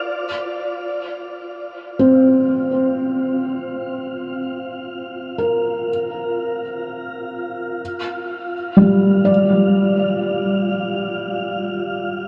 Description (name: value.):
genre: ambient.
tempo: free time.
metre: none.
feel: none.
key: unclear.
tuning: A4 = 440 Hz.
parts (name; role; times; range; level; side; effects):
wind-like tuned noise texture; texture; 0.0-12.3 s; F4 to F5; -30 LUFS; equal; built-in reverb, shimmer reverb.
felt-muted upright piano; arpeggios; 2.0-12.3 s; G3 to D5; -19 LUFS; equal; shimmer reverb, diffuse ambient delay.
room: wet huge ambient reverb, RT60 7.7 s.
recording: dark, warm production.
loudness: -20 LUFS.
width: mono.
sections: 0.1-12.3 A section.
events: fade-in on synth texture 0.1-12.3.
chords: 0.1 C7sus4; 7.8 Bb.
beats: free time.